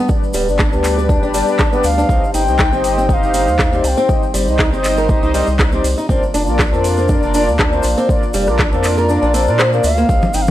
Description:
afro house; 120 BPM; 4/4; swing 54% on 16ths; A4 = 442 Hz
dark analog pad; sustained chords; 0.0-10.5 s; G3 to D5; -22 LUFS; equal; chorus, sidechain pumping
flamenco guitar; arpeggios; 0.0-10.4 s; G3 to C5; -20 LUFS; equal; sidechain pumping, analog delay
mellow synth brass; stabs; 0.1-10.5 s; D4 to Eb5; -20 LUFS; left 2 dB; chorus, sidechain pumping, analog delay
electronic kick drum; drums; 0.1-10.2 s; -17 LUFS; equal; overdrive, studio reverb
tube shaker; percussion; 0.1-10.5 s; -32 LUFS; left 1 dB
round analog bass; bass; 0.3-10.5 s; D1 to Bb2; -19 LUFS; equal; sidechain pumping
afro-pop drum kit; drums; 0.3-10.5 s; handclaps, hi-hat, rim click; -22 LUFS; equal; overdrive, studio reverb
bright reedy bansuri; melody; 1.8-4.3, 9.8-10.5 s; F5 to Bb5; -19 LUFS; left 2 dB; analog delay
congas; percussion; 10.2-10.5 s; -16 LUFS; left 1 dB
light reverb, studio reverb; dry, gritty hardware recording; -12 LUFS; side -13 dB against mid
0.0-10.5 A section
kick drops out 9.1-10.1
0.0 G; 2.1 Cm; 6.1 Bb

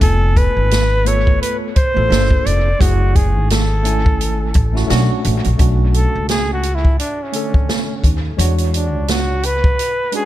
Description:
hip hop, jazz-hop; 86 BPM; 4/4; swing 58% on 16ths; B dorian; A4 = 439 Hz
breathy flugelhorn; melody; 0.0-10.3 s; C#4 to D5; -21 LUFS; equal; dub echo
tine electric piano; accompaniment; 0.0-10.3 s; D3 to G#5; -24 LUFS; right 1 dB; overdrive, fast stereo tremolo, dub echo
upright bass; bass; 0.0-9.7 s; E#1 to E2; -16 LUFS; equal
open jazz drum kit; drums; 0.0-10.3 s; hi-hat, kick drum, snare drum; -17 LUFS; equal
small room ambience; echo-heavy mix; -13 LUFS; side -14 dB against mid
0.0-5.6 A section; 5.6-10.3 B section
flugelhorn solo 5.6-10.3
0.0 C#7b13/E# (rootless); 2.1 Gm9; 2.8 F#m9; 4.9 Bm9; 8.4 E13

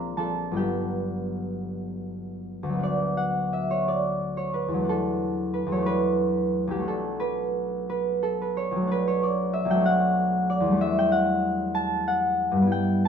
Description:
classical, solo harp piece; 50-64 BPM (dotted quarters); 6/8; rubato; A4 = 436 Hz
concert harp; solo; 0.0-13.1 s; G1 to F6; -23 LUFS; equal
moderate stone room reverb, RT60 0.9 s; minimal, uncompressed stereo recording; -23 LUFS; side -7 dB against mid
0.0-2.8 A section; 2.8-13.1 B section
0.0 Bbadd9; 0.6 Gmaj7; 2.8 D6; 4.9 E9sus4; 10.8 Em11

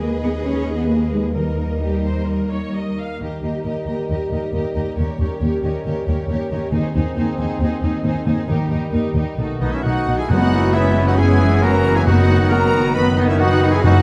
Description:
cinematic, heroic adventure film score; 136 BPM; 4/4; straight; Eb mixolydian; A4 = 440 Hz
rich symphonic violin section; melody; 0.0-14.0 s; A4 to B5; -34 LUFS; equal
clear symphonic violin section; second line; 0.0-14.0 s; F#4 to B5; -33 LUFS; equal
rich symphonic viola section; accompaniment; 0.0-14.0 s; D#3 to F5; -28 LUFS; equal
concert harp; arpeggios; 0.0-14.0 s; F#2 to B5; -29 LUFS; equal
rich symphonic cello section; bass; 0.0-14.0 s; Eb2 to D#4; -26 LUFS; equal
warm symphonic double bass section; bass; 0.0-14.0 s; F#1 to Eb2; -25 LUFS; equal
timpani; percussion; 0.0-2.0, 8.5-14.0 s; F#2 to Eb3; -24 LUFS; equal
clear trombone section; sustained chords; 3.2-14.0 s; C#3 to Eb4; -30 LUFS; equal
bright oboe; second line; 9.6-14.0 s; D#4 to B4; -30 LUFS; equal
clear clarinet; second line; 9.6-14.0 s; D#4 to B4; -28 LUFS; equal
warm French horn section; sustained chords; 9.6-14.0 s; D#4 to B4; -26 LUFS; equal
warm trumpet; stabs; 9.6-14.0 s; B3 to F#4; -27 LUFS; equal
moderate scoring stage reverb, RT60 2.0 s; dark, warm production; -19 LUFS; mono
0.0-3.2 A section; 3.2-10.3 B section; 10.3-14.0 C section
0.0 Abm/Eb; 1.4 Eb; 5.0 Eb7; 6.7 Ab/Eb; 8.5 Eb; 9.4 B7; 10.3 E/F#

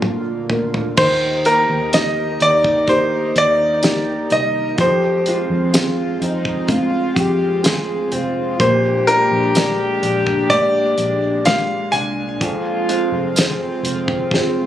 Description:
pop ballad; 63 BPM; 4/4; straight; Eb major; A4 = 440 Hz
felt-muted upright piano; accompaniment; 0.0-14.7 s; F2 to D5; -25 LUFS; left 1 dB
airy breathy pad; sustained chords; 0.0-14.7 s; Bb2 to Bb4; -25 LUFS; right 1 dB; chorus
damped 70s drum kit; drums; 0.0-14.5 s; crash cymbal, hi-hat, kick drum, snare drum, toms; -20 LUFS; equal
bright grand piano; melody; 1.0-14.7 s; Bb4 to Ab5; -17 LUFS; equal
mellow French horn section; second line; 1.0-14.7 s; C4 to Ab4; -23 LUFS; left 2 dB
nylon-string guitar; arpeggios; 1.0-14.7 s; F2 to G4; -27 LUFS; equal
vintage muted fingered electric bass; bass; 1.0-14.7 s; F1 to F2; -26 LUFS; equal
tambourine; percussion; 1.9-13.6 s; -26 LUFS; right 2 dB
light reverb, small room ambience; recorded on a phone in the room, club reverb, compression; -15 LUFS; side -11 dB against mid
1.0-14.7 A section
drum fill 0.0-1.0, 14.3-14.7
0.0 Bb; 1.0 Eb; 4.8 Fm; 8.6 Bb7; 12.4 Fm

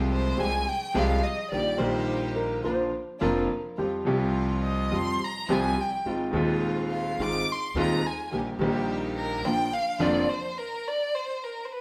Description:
tango; 106 BPM; 4/4; rubato; A4 = 440 Hz
clear concert grand piano; accompaniment; 0.0-10.2 s; Eb1 to G4; -30 LUFS; equal
rich symphonic string section; stabs; 0.0-10.2 s; G3 to G4; -39 LUFS; equal
upright bass; bass; 0.0-10.2 s; F1 to F2; -37 LUFS; equal
warm violin; second line; 0.1-11.8 s; Bb4 to D6; -32 LUFS; equal
hollow-body jazz guitar; second line; 2.4-4.5 s; G4 to C5; -33 LUFS; equal
wet stone room reverb, RT60 1.1 s; band playing live in one room; -27 LUFS; mono
0.0-11.8 A section
violin solo 0.0-11.8; stop 10.6-11.8
0.0 Fmadd9/C; 1.5 Eb/Bb; 2.7 Bb; 3.8 Fsus2; 6.1 Ab6; 8.3 Eb/Bb; 9.4 Bb; 10.6 N.C.

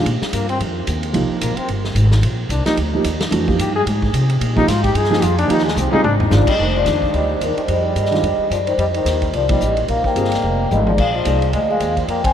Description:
modal jazz; 220 BPM; 4/4; swing 58% on 8ths; F dorian; A4 = 440 Hz
dark baby grand piano; accompaniment; 0.0-11.4 s; Eb3 to Ab4; -22 LUFS; right 2 dB
upright bass; bass; 0.0-12.3 s; F1 to C3; -19 LUFS; equal
vintage drum kit; drums; 0.1-12.3 s; crash cymbal, hi-hat, kick drum, ride cymbal, snare drum, toms; -24 LUFS; equal
bright trombone; second line; 0.3-12.3 s; Eb3 to Ab4; -22 LUFS; left 2 dB
vibraphone with soft mallets; melody; 6.3-12.3 s; Bb4 to Ab5; -19 LUFS; left 1 dB
wet huge ambient reverb, RT60 8.7 s; in a vast, echoing space; -15 LUFS; side -9 dB against mid
0.0-6.6 A section; 6.6-12.3 B section
trombone solo 0.0-6.6; drum fill 5.8-6.3, 10.7; band accent 9.5
0.0 F9sus4; 2.2 Bb9sus4; 6.6 F9sus4; 11.0 Bb9sus4

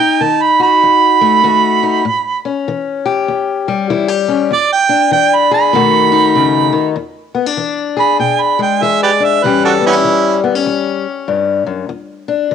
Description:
acoustic country blues, solo or duo; 97 BPM; 4/4; swing 62% on 8ths; A4 = 441 Hz
clear harmonica; melody; 0.0-10.4 s; B3 to B5; -11 LUFS; right 7 dB; plate reverb
fingerpicked steel-string acoustic guitar; accompaniment; 0.0-12.5 s; E2 to G#4; -14 LUFS; left 7 dB; cassette tape, plate reverb
moderate studio reverb, RT60 0.5 s; home recording on cassette; -11 LUFS; side -7 dB against mid
0.0-7.0 A section; 7.0-12.5 B section
harmonica solo 0.0-7.0
0.0 B7; 2.0 A7; 4.5 E7; 5.7 B7; 7.0 E7; 9.4 A7; 11.9 E7(no3)

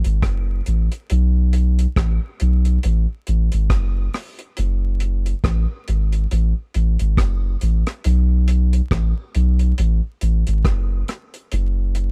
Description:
roots reggae; 69 BPM; 4/4; swing 58% on 16ths; F# minor; A4 = 441 Hz
soft dub sub bass; bass; 0.0-12.1 s; F#1 to B1; -19 LUFS; equal
deep reggae drum kit; drums; 0.0-12.1 s; hi-hat, kick drum, rim click; -25 LUFS; equal
little or no reverb; vinyl crackle; -19 LUFS; mono
0.0-12.1 A section

